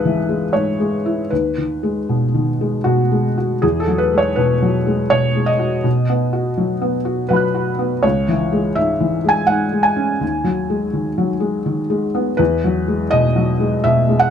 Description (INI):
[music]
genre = neoclassical minimalist piano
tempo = 82 BPM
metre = 3/4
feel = rubato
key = E major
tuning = A4 = 440 Hz
[part]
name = felt-muted upright piano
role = solo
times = 0.0-14.3 s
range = C#2 to F#6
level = -15 LUFS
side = equal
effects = none
[sound]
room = light reverb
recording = close, detailed microphones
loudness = -15 LUFS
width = side -8 dB against mid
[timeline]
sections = 0.0-3.6 A section; 3.6-14.3 A section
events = none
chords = 0.0 C#m; 1.3 G#m7/D#; 3.6 Eadd9; 5.9 B; 8.0 C#m; 10.2 G#7(no3)/D#; 12.4 Eadd9